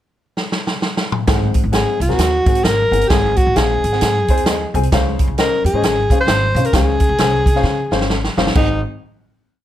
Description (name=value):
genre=uptempo 1960s-style soul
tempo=132 BPM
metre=4/4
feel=swing 60% on 8ths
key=Ab mixolydian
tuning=A4 = 439 Hz
part: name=swinging big-band drum kit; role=drums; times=0.4-8.7 s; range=crash cymbal, hi-hat, kick drum, snare drum, toms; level=-18 LUFS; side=right 1 dB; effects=none
part: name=dark upright piano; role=accompaniment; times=1.3-8.8 s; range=Ab1 to Ab5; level=-22 LUFS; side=left 4 dB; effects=none
part: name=upright bass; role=bass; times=1.3-8.8 s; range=G1 to Db3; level=-20 LUFS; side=equal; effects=none
part: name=breathy alto saxophone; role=melody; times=1.7-8.8 s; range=Eb4 to C5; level=-17 LUFS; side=equal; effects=slapback echo
room=light reverb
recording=none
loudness=-14 LUFS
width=side -12 dB against mid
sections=0.0-1.3 pickup bar; 1.3-8.6 A section; 8.6-9.6 final chord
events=drum fill 0.4-1.3, 7.6-8.6; upright piano fill 4.0-4.9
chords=0.0 N.C.; 1.3 Ab7; 4.9 Dbmaj7; 8.6 Ab7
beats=0.37 0.82 | 1.28 1.74 2.19 2.65 | 3.10 3.56 4.01 4.47 | 4.92 5.37 5.83 6.28 | 6.74 7.19 7.64 8.10 | 8.55